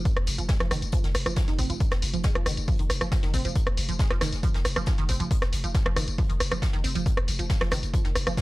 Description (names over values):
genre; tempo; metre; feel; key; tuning
driving peak-time techno; 137 BPM; 4/4; straight; unclear; A4 = 439 Hz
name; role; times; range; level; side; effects
growling 808-style bass; bass; 0.0-8.4 s; F1; -31 LUFS; equal; overdrive, sidechain pumping, low-pass filter
electronic kick drum; drums; 0.1-8.4 s; none; -25 LUFS; equal; none
jazz brush drum kit; drums; 0.1-8.4 s; hi-hat, snare drum; -40 LUFS; left 2 dB; high-pass filter on hats, high-pass filter on snare, high-pass filter on room
punchy analog drum machine; drums; 0.1-8.4 s; hi-hat, rim click, tambourine; -30 LUFS; equal; sidechain pumping on hats, sidechain pumping on cymbals, sidechain pumping on perc
resonant blip pluck; riff; 0.4-8.4 s; Eb3 to C4; -34 LUFS; right 4 dB; chorus, phaser, sidechain pumping, analog delay
room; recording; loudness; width
digital ambience; dry, gritty hardware recording; -23 LUFS; side -20 dB against mid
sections
0.0-8.4 A section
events
none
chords
none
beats
0.05 0.49 | 0.93 1.37 1.80 2.24 | 2.68 3.12 3.56 3.99 | 4.43 4.87 5.31 5.75 | 6.18 6.62 7.06 7.50 | 7.94 8.37